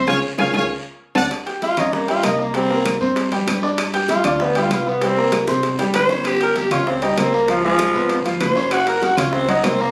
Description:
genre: latin, salsa.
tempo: 194 BPM.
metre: 4/4.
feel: straight.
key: unclear.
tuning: A4 = 440 Hz.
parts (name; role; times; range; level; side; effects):
mellow trumpet section; melody; 0.0-1.2 s; Db5 to A5; -24 LUFS; equal; plate reverb.
clear concert grand piano; accompaniment; 0.0-9.9 s; F3 to G6; -24 LUFS; equal; none.
upright bass; bass; 0.0-9.9 s; Gb1 to G2; -30 LUFS; equal; none.
bongos; percussion; 0.1-9.8 s; none; -32 LUFS; equal; none.
claves; percussion; 0.1-9.8 s; none; -34 LUFS; equal; none.
congas; percussion; 0.1-9.9 s; none; -32 LUFS; equal; none.
guiro; percussion; 0.1-9.9 s; none; -37 LUFS; equal; none.
timbales; percussion; 0.1-9.8 s; none; -31 LUFS; equal; none.
growling tenor saxophone; melody; 1.6-9.9 s; F3 to C5; -21 LUFS; equal; plate reverb.
room: moderate studio ambience, RT60 0.5 s.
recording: recorded on a phone in the room, studio reverb, compression.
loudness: -19 LUFS.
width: mono.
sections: 0.0-1.3 A section; 1.3-9.9 B section.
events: band accent 0.1-1.3; drum fill 0.4-1.3, 5.3-6.3; tenor saxophone solo 1.3-9.9.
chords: 0.1 Db; 0.7 D7; 1.3 Gdim; 2.5 C5; 3.8 G; 5.0 C5; 6.3 Gdim; 7.5 Db7; 8.7 Gb.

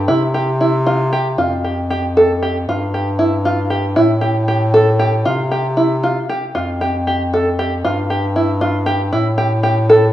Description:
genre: contemporary instrumental, chamber music in an uneven meter.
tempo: 232 BPM (eighths).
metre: 5/8.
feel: straight.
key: unclear.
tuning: A4 = 442 Hz.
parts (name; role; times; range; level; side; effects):
clear bass clarinet; bass; 0.0-10.1 s; F2 to C3; -18 LUFS; equal; none.
open-back banjo; arpeggios; 0.1-10.0 s; E4 to A4; -16 LUFS; equal; none.
room: wet recital hall reverb, RT60 1.5 s.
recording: dark, warm production.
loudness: -14 LUFS.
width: side -13 dB against mid.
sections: 0.0-1.4 A section; 1.4-10.1 B section.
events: none.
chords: 0.1 C; 1.4 N.C.; 4.0 A5; 5.3 Csus4; 6.6 N.C.; 9.1 A5.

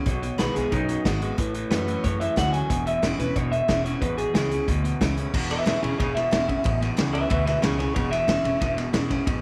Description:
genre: rockabilly.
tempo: 182 BPM.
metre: 4/4.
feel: straight.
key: E major.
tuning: A4 = 440 Hz.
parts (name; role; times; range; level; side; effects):
electric guitar through a small old amp; melody; 0.0-8.8 s; D#4 to G#5; -29 LUFS; equal; tape echo.
picked steel-string acoustic guitar; accompaniment; 0.0-9.4 s; E2 to F#4; -34 LUFS; equal; none.
electric guitar through a small old amp; riff; 0.0-9.4 s; E2 to G#3; -32 LUFS; equal; none.
upright bass; bass; 0.1-9.4 s; E1 to F#2; -31 LUFS; equal; none.
vintage drum kit; drums; 0.1-9.3 s; crash cymbal, hi-hat, kick drum, ride cymbal, snare drum; -30 LUFS; equal; none.
room: light reverb, small room ambience.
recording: none.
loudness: -24 LUFS.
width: mono.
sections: 0.0-5.3 A section; 5.3-9.4 B section.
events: clean electric guitar solo 5.3-9.4.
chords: 0.1 B6; 1.4 A6; 2.7 E6.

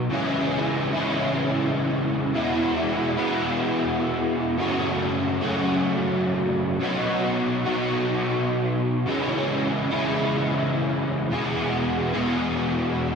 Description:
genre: rock.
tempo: 107 BPM.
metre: 4/4.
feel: straight.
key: E major.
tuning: A4 = 440 Hz.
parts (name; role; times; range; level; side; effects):
crunchy overdriven guitar; solo; 0.0-13.2 s; E2 to G#4; -22 LUFS; equal; ensemble chorus, diffuse ambient delay.
room: wet lush hall reverb, RT60 2.7 s.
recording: dreamy mix soaked in reverb.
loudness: -22 LUFS.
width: side -6 dB against mid.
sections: 0.0-2.3 A section; 2.3-11.3 B section; 11.3-13.2 A section.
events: none.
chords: 0.1 C#m; 2.3 E; 4.6 F#m; 6.8 B; 9.1 C#m; 11.3 E.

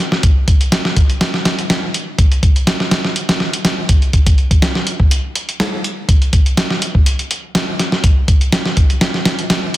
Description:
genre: breakbeat.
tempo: 123 BPM.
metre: 4/4.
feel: swing 53% on 16ths.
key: none.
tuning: none.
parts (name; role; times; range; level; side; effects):
dusty soul sampler-style drum kit; drums; 0.1-9.8 s; hi-hat, kick drum, snare drum; -12 LUFS; equal; none.
room: light reverb.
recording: dense, heavily limited modern master.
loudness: -12 LUFS.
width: side -15 dB against mid.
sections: 0.0-9.8 A section.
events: none.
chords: none.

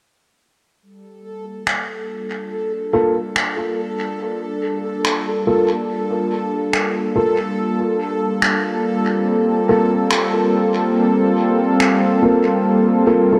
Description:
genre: ambient dub.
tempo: 71 BPM.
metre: 4/4.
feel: swing 60% on 16ths.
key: G minor.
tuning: A4 = 441 Hz.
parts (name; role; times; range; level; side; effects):
warm analog pad; sustained chords; 0.8-13.4 s; G3 to A4; -21 LUFS; equal; chorus, tremolo.
bubbling stepped-filter texture; texture; 1.3-13.4 s; A4; -28 LUFS; equal; chorus, built-in reverb.
finger snaps; drums; 1.7-12.0 s; none; -24 LUFS; equal; dub echo.
dark upright piano; stabs; 2.9-13.4 s; Bb3 to A4; -22 LUFS; equal; low-pass filter, dub echo.
room: moderate lush hall reverb, RT60 2.6 s.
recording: dark, warm production.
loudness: -18 LUFS.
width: mono.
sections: 0.8-13.4 A section.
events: fade-in on analog synth pad 0.8-13.4.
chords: 0.8 Gm9.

